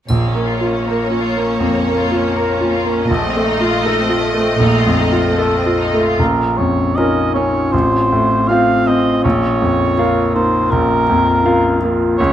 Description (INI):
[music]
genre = classical, romantic movement for piano and orchestra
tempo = 79 BPM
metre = 4/4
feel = uneven beats, rubato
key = Bb minor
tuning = A4 = 439 Hz
[part]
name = clear grand piano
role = melody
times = 0.1-12.3 s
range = A1 to F5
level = -15 LUFS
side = equal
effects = none
[part]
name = rich symphonic violin section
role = melody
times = 0.1-5.9 s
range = Db5 to Eb5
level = -24 LUFS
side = equal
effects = none
[part]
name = clear symphonic violin section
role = second line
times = 0.1-6.2 s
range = A3 to F4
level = -23 LUFS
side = left 4 dB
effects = none
[part]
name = rich symphonic viola section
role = accompaniment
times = 0.1-6.0 s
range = A3 to Bb3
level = -24 LUFS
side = equal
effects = none
[part]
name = warm symphonic cello section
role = bass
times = 0.1-5.2 s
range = F2 to Bb2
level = -20 LUFS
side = right 2 dB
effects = none
[part]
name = triangle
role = percussion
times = 0.1-1.6 s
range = none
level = -36 LUFS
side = right 1 dB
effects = none
[part]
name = mellow clarinet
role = second line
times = 6.2-12.3 s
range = C4 to F4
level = -24 LUFS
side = left 2 dB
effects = none
[part]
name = warm cor anglais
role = second line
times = 6.2-12.3 s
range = Bb4 to F5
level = -17 LUFS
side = right 3 dB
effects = none
[part]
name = mellow French horn section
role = sustained chords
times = 6.2-12.3 s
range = Ab3 to F4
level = -22 LUFS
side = left 4 dB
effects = none
[sound]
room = moderate recital hall reverb, RT60 1.6 s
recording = none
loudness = -13 LUFS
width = side -11 dB against mid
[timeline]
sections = 0.1-6.2 A section; 6.2-12.3 B section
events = none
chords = 0.1 Bbm; 3.1 F7/Bb; 6.2 Bbm; 7.7 F/A; 9.2 Bbm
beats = | 0.09 0.86 1.60 2.35 | 3.09 3.83 4.58 5.37 | 6.18 6.96 7.73 8.49 | 9.24 9.98 10.72 11.45 | 12.19